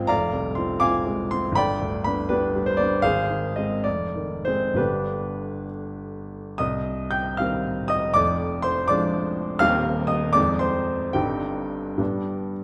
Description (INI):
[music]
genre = classical, romantic character piece for solo piano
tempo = 62-86 BPM (dotted quarters)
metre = 6/8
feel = rubato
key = C minor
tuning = A4 = 437 Hz
[part]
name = clear baby grand piano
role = solo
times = 0.0-12.6 s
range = Eb1 to G6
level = -24 LUFS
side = equal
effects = none
[sound]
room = wet recital hall reverb, RT60 1.4 s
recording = none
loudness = -24 LUFS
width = mono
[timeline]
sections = 0.0-6.6 A section; 6.6-12.6 B section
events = none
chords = 0.1 Dm7b5/F; 1.6 G; 3.0 Ab; 3.9 Fm7; 4.8 G; 6.6 Cm; 8.1 Ddim/F; 9.6 Cm/Eb; 10.4 Fm7; 11.2 Cm/G; 12.0 G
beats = | 0.10 0.82 | 1.56 2.29 | 3.03 3.85 | 4.77 5.70 | 6.59 7.39 | 8.14 8.89 | 9.62 10.36 | 11.16 11.99